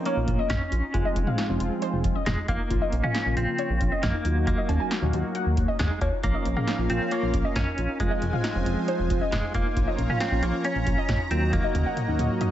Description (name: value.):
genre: synth-pop.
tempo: 136 BPM.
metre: 4/4.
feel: straight.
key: Bb minor.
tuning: A4 = 440 Hz.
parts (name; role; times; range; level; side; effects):
clean electric guitar; melody; 0.0-12.5 s; Ab3 to Db4; -31 LUFS; equal; tremolo, analog delay.
mellow synth brass; accompaniment; 0.0-12.5 s; Db3 to Ab4; -31 LUFS; equal; chorus, analog delay.
warbly dusty pluck; second line; 0.1-12.5 s; C5 to Ab5; -33 LUFS; equal; chorus, phaser, analog delay.
warbly dusty pluck; arpeggios; 0.1-12.5 s; Db4 to Gb4; -36 LUFS; equal; chorus, analog delay.
electro analog drum machine; drums; 0.1-12.5 s; cowbell, hi-hat, kick drum, snare drum, toms; -28 LUFS; equal; none.
chorused synth bass; bass; 0.2-12.3 s; F1 to Eb2; -26 LUFS; equal; none.
lush unison pad; sustained chords; 6.2-12.5 s; Db4 to Bb5; -35 LUFS; equal; chorus.
room: light reverb, digital ambience.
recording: echo-heavy mix, nothing above 7.9 kHz.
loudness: -23 LUFS.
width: side -12 dB against mid.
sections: 0.0-12.5 A section.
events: drum fill 11.5-12.5.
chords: 0.0 Bbm; 0.9 Fm; 2.7 Bbm; 4.2 Ebm; 6.2 Bbm; 8.0 Fm; 9.8 Bbm; 11.3 Ebm.